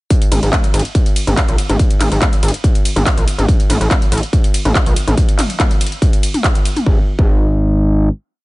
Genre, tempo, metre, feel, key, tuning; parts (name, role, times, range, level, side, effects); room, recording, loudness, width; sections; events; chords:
driving peak-time techno; 142 BPM; 4/4; straight; G# minor; A4 = 435 Hz
electronic kick drum; drums; 0.1-7.3 s; -14 LUFS; equal; distortion
techno drum kit; drums; 0.1-6.8 s; handclaps, hi-hat, ride cymbal, toms; -19 LUFS; equal
gritty driven synth bass; bass; 0.3-8.1 s; G#1 to B1; -15 LUFS; equal; distortion, sidechain pumping
digital ambience; nothing above 10.6 kHz; -12 LUFS; side -21 dB against mid
0.1-6.9 drop; 6.9-8.4 final note
drop 0.1-6.9